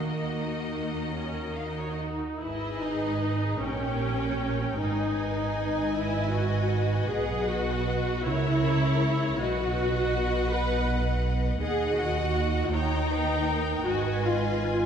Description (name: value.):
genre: classical, slow romantic movement for string orchestra.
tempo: 44-55 BPM (dotted quarters).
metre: 6/8.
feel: rubato.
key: Eb minor from 11.6 s.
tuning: A4 = 438 Hz.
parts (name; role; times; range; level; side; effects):
clear symphonic violin section; melody; 0.0-14.9 s; Db5 to Bb5; -37 LUFS; left 3 dB; none.
rich symphonic violin section; second line; 0.0-14.9 s; Gb4 to G5; -34 LUFS; left 4 dB; none.
rich symphonic viola section; accompaniment; 0.0-14.9 s; Bb3 to B4; -29 LUFS; equal; none.
rich chamber cello section; bass; 0.0-14.9 s; Eb2 to Eb3; -33 LUFS; right 3 dB; none.
rich symphonic double bass section; bass; 0.0-14.9 s; G#1 to Eb2; -31 LUFS; right 2 dB; none.
room: wet concert hall reverb, RT60 2.1 s.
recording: dark, warm production.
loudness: -25 LUFS.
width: side -8 dB against mid.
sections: 0.0-2.4 A section; 2.4-14.9 B section.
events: none.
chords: 0.0 Ebm; 2.4 G#m; 3.6 Gdim/Bb; 4.8 G#m; 7.1 B; 8.3 A#dim/C#; 9.4 B; 11.6 Ebm; 12.7 Eb7; 13.9 Abm.